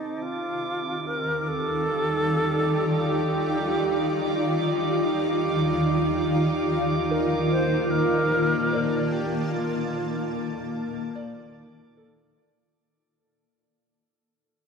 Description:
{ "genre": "ambient", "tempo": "free time", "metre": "none", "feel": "none", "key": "unclear", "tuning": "A4 = 440 Hz", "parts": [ { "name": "alto flute", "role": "melody", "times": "0.0-10.7 s", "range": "Eb4 to C5", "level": "-28 LUFS", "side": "equal", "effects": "diffuse ambient delay" }, { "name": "granular cloud pad", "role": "sustained chords", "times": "0.0-12.8 s", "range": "Eb3 to A5", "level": "-24 LUFS", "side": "equal", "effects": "built-in reverb" }, { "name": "analog drone", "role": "drone", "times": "0.0-12.9 s", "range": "Eb3 to Eb4", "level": "-35 LUFS", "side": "right 1 dB", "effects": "none" }, { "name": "drifting glass-harmonics texture", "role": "texture", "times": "0.1-12.8 s", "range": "D6", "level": "-34 LUFS", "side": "right 2 dB", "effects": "chorus, built-in reverb" }, { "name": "felt-muted upright piano", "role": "arpeggios", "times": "7.1-13.1 s", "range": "A4 to D5", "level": "-34 LUFS", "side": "right 2 dB", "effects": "diffuse ambient delay" } ], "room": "wet cathedral reverb, RT60 6.5 s", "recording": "dreamy mix soaked in reverb", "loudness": "-22 LUFS", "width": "side -6 dB against mid", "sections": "0.0-12.8 A section", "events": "fade-out 8.4-12.8", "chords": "0.0 Fadd9/Eb; 6.3 Gm7/Eb", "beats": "free time" }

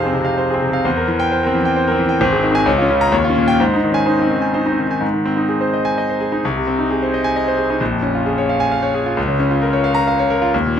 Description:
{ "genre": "classical, virtuoso piano study", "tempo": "130 BPM", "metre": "3/4", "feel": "rubato", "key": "Ab major", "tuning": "A4 = 440 Hz", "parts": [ { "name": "bright concert grand piano", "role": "solo", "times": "0.0-10.8 s", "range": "Ab1 to Bb5", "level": "-14 LUFS", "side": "equal", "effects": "none" } ], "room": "light reverb", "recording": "close, detailed microphones", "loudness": "-15 LUFS", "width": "side -8 dB against mid", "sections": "0.0-5.0 A section; 5.0-10.8 B section", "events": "none", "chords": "0.0 Fm; 0.8 C7/E; 2.2 Ab; 2.7 Bbm/Db; 3.1 Eb9; 3.6 Ab; 6.4 Ab/C; 7.8 Bbm7; 9.2 Bbm/Db", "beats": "0.38 | 0.85 1.31 1.76 | 2.21 2.67 3.13 | 3.60 4.08 4.55 | 5.03 5.50 5.96 | 6.43 6.89 7.35 | 7.80 8.26 8.72 | 9.17 9.62 10.08 | 10.53" }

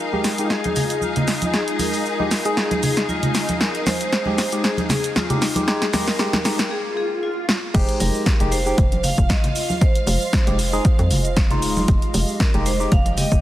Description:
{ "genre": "deep house", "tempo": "116 BPM", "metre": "4/4", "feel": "swing 55% on 16ths", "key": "F minor", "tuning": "A4 = 440 Hz", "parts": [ { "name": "vibraphone with medium hard mallets", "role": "melody", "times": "0.0-13.4 s", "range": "F4 to F5", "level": "-27 LUFS", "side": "equal", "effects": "low-pass filter, tape echo" }, { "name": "hollow soft pad", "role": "sustained chords", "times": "0.0-13.4 s", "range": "Ab3 to Eb5", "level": "-31 LUFS", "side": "right 1 dB", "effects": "ensemble chorus, vintage 12-bit sampler grit, sidechain pumping" }, { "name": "rich studio string section", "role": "texture", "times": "0.0-13.4 s", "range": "Eb4 to G5", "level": "-29 LUFS", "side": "left 2 dB", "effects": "sidechain pumping" }, { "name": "soft string machine", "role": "texture", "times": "0.0-6.7 s", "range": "Eb5", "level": "-35 LUFS", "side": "equal", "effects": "ensemble chorus, sidechain pumping" }, { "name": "barky tine electric piano", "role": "stabs", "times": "0.1-12.9 s", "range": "Ab3 to Ab4", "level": "-26 LUFS", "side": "equal", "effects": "overdrive, phaser, sidechain pumping, low-pass filter" }, { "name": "congas", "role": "percussion", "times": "0.1-13.3 s", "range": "none", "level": "-26 LUFS", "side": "right 1 dB", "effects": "sidechain pumping on perc" }, { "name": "punchy analog drum machine", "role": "drums", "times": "0.2-13.4 s", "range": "crash cymbal, hi-hat, shaker, snare drum", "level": "-23 LUFS", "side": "equal", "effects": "overdrive" }, { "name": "swell", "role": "sound effects", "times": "6.9-7.7 s", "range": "none", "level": "-31 LUFS", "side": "right 3 dB", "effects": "none" }, { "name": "hollow knocking FM bass", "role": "bass", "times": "7.7-13.4 s", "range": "Eb1 to F2", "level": "-22 LUFS", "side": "equal", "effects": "tube saturation, sidechain pumping" }, { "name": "electronic kick drum", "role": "drums", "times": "7.7-13.4 s", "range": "none", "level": "-17 LUFS", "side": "equal", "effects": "overdrive" } ], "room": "light reverb, digital ambience", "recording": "dense, heavily limited modern master, vinyl crackle", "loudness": "-17 LUFS", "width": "side -14 dB against mid", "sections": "0.0-7.7 A section; 7.7-13.4 B section", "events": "build-up 0.0-7.7; drum fill 0.0-6.7, 7.5; filter sweep on tine electric piano 0.0-7.7; filter sweep on vibraphone 0.0-7.7; break 6.7-7.7; swell 6.9-7.7; drop 7.7-13.4", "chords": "0.0 Fm7", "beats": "0.50 1.02 | 1.54 2.06 2.57 3.09 | 3.61 4.12 4.64 5.16 | 5.68 6.19 6.71 7.23 | 7.75 8.26 8.78 9.30 | 9.81 10.33 10.85 11.37 | 11.88 12.40 12.92" }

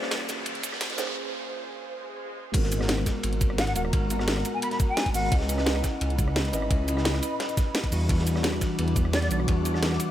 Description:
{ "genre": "liquid drum and bass", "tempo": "173 BPM", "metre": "4/4", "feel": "straight", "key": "G# minor", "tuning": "A4 = 436 Hz", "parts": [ { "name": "mellow tine electric piano", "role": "accompaniment", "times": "0.0-10.1 s", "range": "E3 to D#5", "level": "-31 LUFS", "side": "left 1 dB", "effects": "phaser, tape echo" }, { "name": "ethereal airy pad", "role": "sustained chords", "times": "0.0-10.1 s", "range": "A#2 to D6", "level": "-38 LUFS", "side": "right 1 dB", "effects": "ensemble chorus, built-in reverb, sidechain pumping" }, { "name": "crunchy breakbeat drum kit", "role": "drums", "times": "0.0-10.1 s", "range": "hi-hat, ride cymbal, snare drum", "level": "-36 LUFS", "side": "equal", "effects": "high-pass filter on cymbals, small room ambience, high-pass filter on hats, high-pass filter on snare, high-pass filter on room" }, { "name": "drum and bass drum kit", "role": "drums", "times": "0.0-10.1 s", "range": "crash cymbal, hi-hat, rim click, shaker, snare drum", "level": "-31 LUFS", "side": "equal", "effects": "high-pass filter on hats, small room ambience, high-pass filter on perc, high-pass filter on snare, high-pass filter on cymbals" }, { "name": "riser and swell", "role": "sound effects", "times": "0.0-2.5 s", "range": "none", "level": "-36 LUFS", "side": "equal", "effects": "none" }, { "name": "electronic kick drum", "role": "drums", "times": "0.6-9.6 s", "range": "none", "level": "-25 LUFS", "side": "equal", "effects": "high-pass filter on kick, small room ambience" }, { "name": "dark detuned saw bass", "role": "bass", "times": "2.5-10.0 s", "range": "D#1 to E2", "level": "-28 LUFS", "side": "equal", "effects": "none" }, { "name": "reedy jazz flute", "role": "melody", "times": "3.6-5.4, 9.1-9.4 s", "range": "D5 to B5", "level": "-34 LUFS", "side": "left 2 dB", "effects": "tape echo" } ], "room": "light reverb, small room ambience", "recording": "high-pass filter", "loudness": "-24 LUFS", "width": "side -12 dB against mid", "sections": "0.0-2.5 A section; 2.5-10.1 B section", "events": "build-up 0.0-2.5; riser 0.0-1.2; filter sweep 0.0-2.5; break 1.2-2.5; swell 1.9-2.5; drop 2.5-10.1", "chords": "0.0 A#m9; 2.5 G#m9; 5.3 C#m9; 7.9 Em9", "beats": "0.12 0.46 0.81 | 1.16 1.50 1.85 2.20 | 2.54 2.89 3.24 3.58 | 3.93 4.28 4.62 4.97 | 5.32 5.67 6.01 6.36 | 6.71 7.05 7.40 7.75 | 8.09 8.44 8.79 9.13 | 9.48 9.83" }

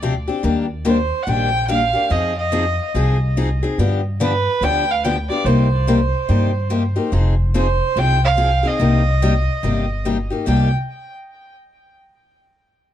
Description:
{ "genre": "acoustic string swing (jazz manouche)", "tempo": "144 BPM", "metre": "4/4", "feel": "swing 62% on 8ths", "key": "C minor", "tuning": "A4 = 439 Hz", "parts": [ { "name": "picked steel-string acoustic guitar", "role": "accompaniment", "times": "0.0-10.7 s", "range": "C3 to Ab4", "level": "-20 LUFS", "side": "left 4 dB", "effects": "none" }, { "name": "upright bass", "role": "bass", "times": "0.0-10.7 s", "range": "F1 to G2", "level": "-19 LUFS", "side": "equal", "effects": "none" }, { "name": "warm violin", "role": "melody", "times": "0.9-10.7 s", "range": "B4 to G5", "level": "-21 LUFS", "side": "right 3 dB", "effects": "tape echo" } ], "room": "little or no reverb", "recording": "dark, warm production", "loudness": "-16 LUFS", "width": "side -11 dB against mid", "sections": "0.0-7.1 A section; 7.1-10.5 B section; 10.5-12.1 C section", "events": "none", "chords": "0.4 Ebmaj7; 2.1 Fm7; 3.8 G7; 5.5 Cm7; 7.1 Fm7; 8.8 Cm7", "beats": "0.02 | 0.44 0.86 1.28 1.70 | 2.11 2.53 2.95 3.37 | 3.78 4.20 4.62 5.04 | 5.46 5.87 6.29 6.71 | 7.13 7.54 7.96 8.38 | 8.80 9.21 9.63 10.05 | 10.47" }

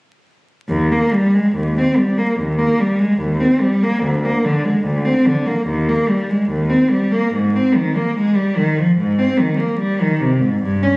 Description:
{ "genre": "classical, baroque-style suite movement for unaccompanied cello", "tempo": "73 BPM", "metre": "4/4", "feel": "rubato", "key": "Eb major", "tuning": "A4 = 440 Hz", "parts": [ { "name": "rich cello", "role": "solo", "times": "0.7-11.0 s", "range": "D2 to Db4", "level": "-14 LUFS", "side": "equal", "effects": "none" } ], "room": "wet recital hall reverb, RT60 1.4 s", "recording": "recorded on a phone in the room, studio reverb, vinyl crackle, compression", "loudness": "-14 LUFS", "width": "side -28 dB against mid", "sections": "0.7-11.0 A section", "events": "none", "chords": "none", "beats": "| 0.68 1.54 2.38 3.21 | 4.04 4.86 5.68 6.50 | 7.35 8.18 9.00 9.82 | 10.63" }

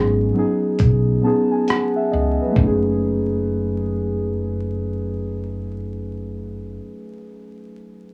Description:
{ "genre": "lo-fi hip hop", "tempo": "68 BPM", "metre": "4/4", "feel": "swing 64% on 16ths", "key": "F# dorian", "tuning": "A4 = 440 Hz", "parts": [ { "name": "muted felt-like synth keys", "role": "accompaniment", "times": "0.0-8.1 s", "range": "F#3 to A5", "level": "-24 LUFS", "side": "equal", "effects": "chorus" }, { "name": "upright bass", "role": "bass", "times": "0.0-6.8 s", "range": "F#1 to C#2", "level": "-25 LUFS", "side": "equal", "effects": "none" }, { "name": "dusty soul sampler-style drum kit", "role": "drums", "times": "0.8-2.8 s", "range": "hi-hat, kick drum, rim click", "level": "-22 LUFS", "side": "equal", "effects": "none" } ], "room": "moderate studio reverb, RT60 0.5 s", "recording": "worn, warbling old tape, cassette tape, vinyl crackle, warbly pitch drift, small room ambience", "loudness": "-21 LUFS", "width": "mono", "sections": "0.0-2.6 A section; 2.6-6.1 B section", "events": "synth keys fill 0.8-2.6", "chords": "0.0 C#9sus4; 2.6 F#m69", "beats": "0.80 1.68 | 2.56 3.44 4.33 5.21" }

